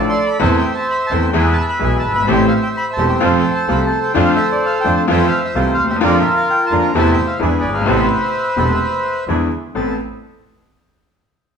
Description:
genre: tango.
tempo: 129 BPM.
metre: 4/4.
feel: rubato.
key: A minor.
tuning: A4 = 437 Hz.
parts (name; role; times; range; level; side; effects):
bandoneon; melody; 0.0-10.0 s; F4 to C6; -18 LUFS; equal; none.
bright grand piano; accompaniment; 0.0-9.9 s; E1 to A4; -18 LUFS; left 2 dB; none.
bandoneon; stabs; 0.0-9.9 s; B3 to C5; -24 LUFS; right 6 dB; none.
clear double bass; bass; 0.0-9.9 s; E1 to F2; -20 LUFS; right 2 dB; none.
room: wet large studio reverb, RT60 1.1 s.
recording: band playing live in one room.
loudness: -13 LUFS.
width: side -6 dB against mid.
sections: 0.0-9.7 A section; 9.7-11.6 B section.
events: none.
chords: 0.4 Am/E; 1.3 E; 2.3 Am7; 3.2 F; 4.1 Dm7/F; 5.1 Fmaj7; 6.0 Bb/F; 6.9 Am/E; 7.4 E7; 7.9 Amadd9; 9.3 E7; 9.7 Amadd9.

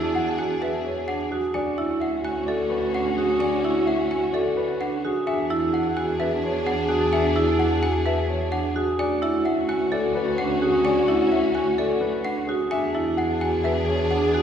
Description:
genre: classical, minimalist pattern music.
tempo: 129 BPM.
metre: 4/4.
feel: straight.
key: unclear.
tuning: A4 = 439 Hz.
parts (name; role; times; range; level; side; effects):
mellow hollow alto flute; second line; 0.0-14.4 s; F#4 to G#4; -28 LUFS; left 1 dB; none.
clear symphonic string section; sustained chords; 0.0-14.4 s; C#4 to G#4; -31 LUFS; left 1 dB; none.
marimba with medium hard mallets; arpeggios; 0.0-14.4 s; D4 to B4; -24 LUFS; right 1 dB; none.
trough xylophone with rubber mallets; arpeggios; 0.0-14.4 s; E5 to G#5; -32 LUFS; left 1 dB; none.
warm studio double bass section; bass; 0.0-14.4 s; D2 to E2; -30 LUFS; right 1 dB; none.
warm concert grand piano; melody; 0.2-14.4 s; G#4 to F#5; -30 LUFS; left 4 dB; none.
room: wet concert hall reverb, RT60 1.9 s.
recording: recorded in a church or concert hall, small room reverb.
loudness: -21 LUFS.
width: side -8 dB against mid.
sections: 0.0-14.4 A section.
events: none.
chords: 0.0 E9; 1.5 Dmaj9#11; 5.3 E9; 9.0 Dmaj9#11; 12.7 E9.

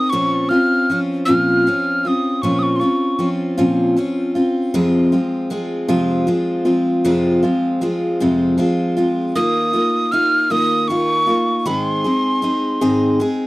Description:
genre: folk.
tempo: 52 BPM (dotted quarters).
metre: 6/8.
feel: straight.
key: unclear.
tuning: A4 = 440 Hz.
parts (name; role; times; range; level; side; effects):
breathy mellow wooden whistle; melody; 0.0-3.3, 9.4-13.2 s; C6 to F6; -18 LUFS; right 1 dB; none.
picked steel-string acoustic guitar; accompaniment; 0.0-13.5 s; F2 to Bb4; -16 LUFS; equal; none.
room: moderate booth ambience, RT60 0.3 s.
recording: dry, close 1970s-style studio recording.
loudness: -15 LUFS.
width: side -20 dB against mid.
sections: 0.0-13.5 A section.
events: none.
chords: 0.1 Bbmadd9; 4.7 Fm; 9.4 Ebsus2; 11.7 Ab.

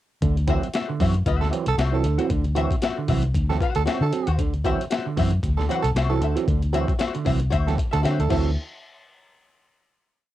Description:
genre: funk.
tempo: 115 BPM.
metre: 4/4.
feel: swing 56% on 16ths.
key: D mixolydian.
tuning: A4 = 440 Hz.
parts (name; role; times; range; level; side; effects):
overdriven clav; stabs; 0.2-8.5 s; D3 to C4; -27 LUFS; right 7 dB; phaser, cassette tape.
vintage muted fingered electric bass; bass; 0.2-8.6 s; C2 to D3; -22 LUFS; left 1 dB; none.
breakbeat sampler-style drum kit; drums; 0.2-8.4 s; crash cymbal, hi-hat, kick drum, snare drum; -27 LUFS; left 1 dB; cassette tape.
archtop guitar, miked and amplified; accompaniment; 0.5-8.5 s; F#4 to F#5; -28 LUFS; left 8 dB; wah, cassette tape.
growling tenor saxophone; second line; 1.4-8.5 s; A4; -29 LUFS; right 7 dB; cassette tape.
room: light reverb.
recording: home recording on cassette.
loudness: -20 LUFS.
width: side -14 dB against mid.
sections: 0.2-8.6 groove; 8.6-10.3 final hit.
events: drum fill 8.0-8.6.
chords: 0.2 D9; 8.6 N.C..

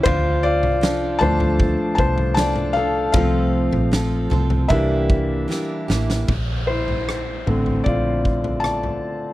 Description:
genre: pop ballad.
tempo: 77 BPM.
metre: 4/4.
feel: straight.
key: unclear.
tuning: A4 = 436 Hz.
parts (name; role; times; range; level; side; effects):
felt-muted upright piano; accompaniment; 0.0-9.3 s; D3 to A5; -20 LUFS; left 2 dB; none.
picked steel-string acoustic guitar; arpeggios; 0.0-6.3 s; C3 to A4; -28 LUFS; right 6 dB; none.
vintage muted fingered electric bass; bass; 0.0-9.0 s; A1 to D2; -23 LUFS; equal; none.
downlifter; sound effects; 0.0-0.1, 6.3-9.3 s; none; -34 LUFS; right 1 dB; none.
huge arena drum kit; drums; 0.1-9.0 s; kick drum, rim click, snare drum, toms; -23 LUFS; equal; none.
room: little or no reverb.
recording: dry, close 1970s-style studio recording.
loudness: -17 LUFS.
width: side -16 dB against mid.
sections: 0.0-6.3 A section; 6.3-9.3 B section.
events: felt piano solo 0.0-6.3, 6.3-9.3; drum fill 5.5-6.3.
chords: 0.1 Dm; 3.1 F; 4.7 C7; 6.3 Bbmaj7.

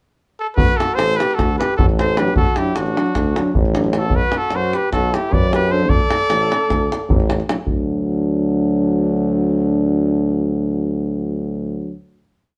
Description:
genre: balkan folk, Balkan brass band.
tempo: 306 BPM (eighths).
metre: 9/8.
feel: straight.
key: D mixolydian.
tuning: A4 = 436 Hz.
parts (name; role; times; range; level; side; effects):
clear cornet; melody; 0.4-7.3 s; F#4 to D5; -23 LUFS; equal; none.
dark trumpet; second line; 0.6-7.3 s; D4 to B4; -27 LUFS; equal; none.
clear tuba; bass; 0.6-11.9 s; A1 to F#2; -23 LUFS; equal; none.
davul; percussion; 0.6-7.9 s; none; -22 LUFS; equal; none.
mellow euphonium; accompaniment; 2.2-11.9 s; F#3; -28 LUFS; equal; none.
warm euphonium; accompaniment; 2.2-11.9 s; D4; -24 LUFS; equal; none.
room: moderate studio reverb, RT60 0.7 s.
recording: band playing live in one room.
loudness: -18 LUFS.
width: mono.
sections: 0.0-0.6 pickup bar; 0.6-7.7 A section; 7.7-11.2 final chord.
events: none.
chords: 0.0 N.C.; 0.6 D; 4.1 B5; 5.9 D5; 7.7 D.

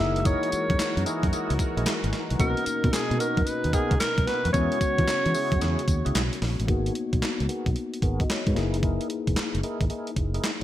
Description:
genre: R&B, new jack swing.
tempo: 112 BPM.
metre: 4/4.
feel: swing 66% on 16ths.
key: unclear.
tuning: A4 = 441 Hz.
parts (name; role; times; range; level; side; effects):
breathy alto saxophone; melody; 0.0-6.1 s; G#4 to E5; -28 LUFS; equal; ping-pong delay.
bell-like tine electric piano; accompaniment; 0.0-10.6 s; G#3 to D#5; -32 LUFS; left 6 dB; low-pass filter.
sweeping resonant pad; sustained chords; 0.0-6.7 s; B2 to A#4; -33 LUFS; right 1 dB; lush chorus.
tonewheel organ; stabs; 0.0-10.5 s; B3 to A#4; -35 LUFS; right 2 dB; overdrive, chorus vibrato, slow rotary speaker, low-pass filter.
fretless electric bass; bass; 0.0-10.4 s; E1 to E3; -27 LUFS; equal; lush chorus.
gated 80s digital drum machine; drums; 0.2-10.6 s; handclaps, hi-hat, kick drum, snare drum, tambourine; -27 LUFS; equal; gated reverb, gated reverb snare.
room: little or no reverb.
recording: none.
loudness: -23 LUFS.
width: side -12 dB against mid.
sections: 0.0-6.7 A section; 6.7-10.6 B section.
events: filter sweep 6.7-10.6.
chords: 0.0 F#13; 2.4 Bmaj7; 4.5 E69; 6.7 G#m9; 8.6 F#13.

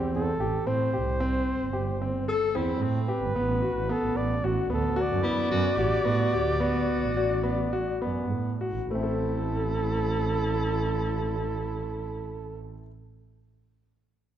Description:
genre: contemporary instrumental, chamber music in an uneven meter.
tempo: 100-112 BPM.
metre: 5/4.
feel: straight.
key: A dorian.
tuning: A4 = 439 Hz.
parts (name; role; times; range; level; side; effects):
warm flugelhorn; melody; 0.0-12.6 s; F#4 to D5; -31 LUFS; right 1 dB; none.
clear concert grand piano; arpeggios; 0.0-12.9 s; A3 to A4; -30 LUFS; left 2 dB; none.
celesta; texture; 0.0-0.2, 7.2-12.7 s; C5 to A5; -38 LUFS; left 11 dB; none.
warm double bass; bass; 0.1-12.6 s; G1 to A2; -30 LUFS; right 3 dB; none.
bright clarinet; second line; 2.3-12.6 s; C4 to A4; -32 LUFS; left 4 dB; none.
room: moderate scoring stage reverb, RT60 1.8 s.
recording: dark, warm production.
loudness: -25 LUFS.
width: side -10 dB against mid.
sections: 0.0-8.9 A section; 8.9-11.9 B section.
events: slowing down 4.4-8.9.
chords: 0.0 Am7; 3.4 Bm/A; 8.9 Am.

